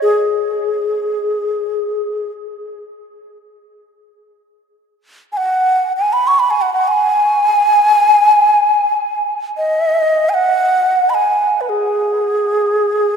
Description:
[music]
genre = world meditative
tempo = free time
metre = none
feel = none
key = G# minor pentatonic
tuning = A4 = 440 Hz
[part]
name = breathy xiao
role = solo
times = 0.0-13.2 s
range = G#4 to C#6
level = -13 LUFS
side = equal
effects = analog delay
[sound]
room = wet plate reverb, RT60 3.3 s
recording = echo-heavy mix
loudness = -12 LUFS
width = side -6 dB against mid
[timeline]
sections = 0.0-4.0 A section; 4.0-13.2 A section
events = none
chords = none

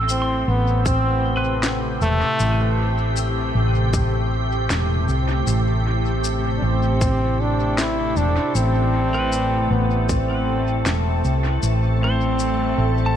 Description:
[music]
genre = ambient dub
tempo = 78 BPM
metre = 4/4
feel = swing 60% on 16ths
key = A minor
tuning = A4 = 441 Hz
[part]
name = soft additive organ-like pad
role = sustained chords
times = 0.0-13.2 s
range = A2 to A4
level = -25 LUFS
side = equal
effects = ensemble chorus, built-in reverb
[part]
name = pedal steel guitar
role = arpeggios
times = 0.0-3.0, 9.1-13.2 s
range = C4 to E6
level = -30 LUFS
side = right 1 dB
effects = tape echo
[part]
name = hollow-body short-scale fingered electric bass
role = bass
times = 0.0-13.2 s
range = E1 to C2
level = -21 LUFS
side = equal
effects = none
[part]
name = clear trombone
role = melody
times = 0.1-13.2 s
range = A3 to E4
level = -24 LUFS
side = equal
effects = dub echo
[part]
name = electronic shaker and snare drum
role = drums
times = 0.1-12.6 s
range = none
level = -30 LUFS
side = left 1 dB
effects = studio reverb, dub echo
[part]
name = electronic kick drum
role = drums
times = 0.9-10.3 s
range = none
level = -22 LUFS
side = equal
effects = studio reverb
[sound]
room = light reverb, digital ambience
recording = none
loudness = -18 LUFS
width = side -10 dB against mid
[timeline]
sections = 0.0-13.2 A section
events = none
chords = 0.0 Am7

